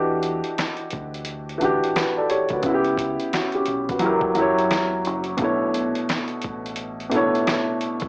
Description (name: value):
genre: lo-fi hip hop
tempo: 87 BPM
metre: 4/4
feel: swing 64% on 16ths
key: B minor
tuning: A4 = 440 Hz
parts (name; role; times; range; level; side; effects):
- dark upright piano; accompaniment; 0.0-8.1 s; B2 to D#5; -21 LUFS; equal; cassette tape, low-pass filter, plate reverb
- deep dub fingered electric bass; bass; 0.0-8.1 s; E1 to F#2; -34 LUFS; equal; tube saturation
- lo-fi sampler-style drum kit; drums; 0.2-8.1 s; hi-hat, kick drum, snare drum; -27 LUFS; equal; none
room: moderate studio reverb, RT60 0.6 s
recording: dry, gritty hardware recording, vinyl crackle, small speaker sound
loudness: -20 LUFS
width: side -37 dB against mid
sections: 0.0-8.1 A section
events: none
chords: 0.0 Em9; 2.6 C#m7b5; 4.0 F#7b9; 5.4 Bm11